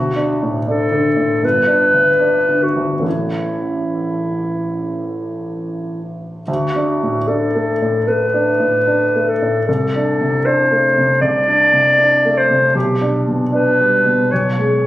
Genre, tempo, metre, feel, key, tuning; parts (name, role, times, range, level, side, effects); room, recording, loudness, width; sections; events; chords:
classical, romantic duo for clarinet and grand piano; 68-80 BPM; 4/4; rubato; D major; A4 = 445 Hz
warm clarinet; melody; 0.0-14.9 s; E4 to D5; -15 LUFS; left 1 dB
warm concert grand piano; accompaniment; 0.0-14.9 s; G1 to E4; -18 LUFS; equal
moderate recital hall reverb, RT60 1.4 s; recorded on a phone in the room, club reverb; -13 LUFS; side -14 dB against mid
0.0-14.9 A section
0.0 D5; 1.4 G; 3.1 A; 6.5 D; 9.7 D5/C; 12.8 G/B; 14.3 E/B (rootless)